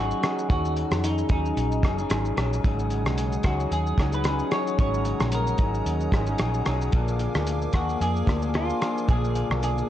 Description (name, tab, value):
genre	indie pop, bedroom pop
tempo	112 BPM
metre	4/4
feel	swing 55% on 16ths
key	Eb minor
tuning	A4 = 442 Hz
part	semi-hollow electric guitar	melody	0.0-9.9 s	Eb4 to Db5	-31 LUFS	equal	lush chorus, tape echo
part	electric guitar through a small old amp	accompaniment	0.0-9.9 s	Ab2 to Ab4	-28 LUFS	left 2 dB	wide subtle chorus, vibrato effect
part	vintage muted fingered electric bass	bass	0.0-9.8 s	Gb1 to F2	-27 LUFS	equal	none
part	cloth-damped thuddy drum kit	drums	0.1-9.9 s	hi-hat, kick drum, rim click, shaker	-26 LUFS	equal	vintage 12-bit sampler grit
part	hollow soft pad	sustained chords	2.6-9.9 s	Bb4 to Eb6	-37 LUFS	right 2 dB	chorus
room	little or no reverb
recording	cassette tape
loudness	-22 LUFS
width	side -12 dB against mid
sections	0.0-9.9 A section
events	none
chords	0.0 Ebm11; 2.6 Ab7sus4; 6.9 Bb7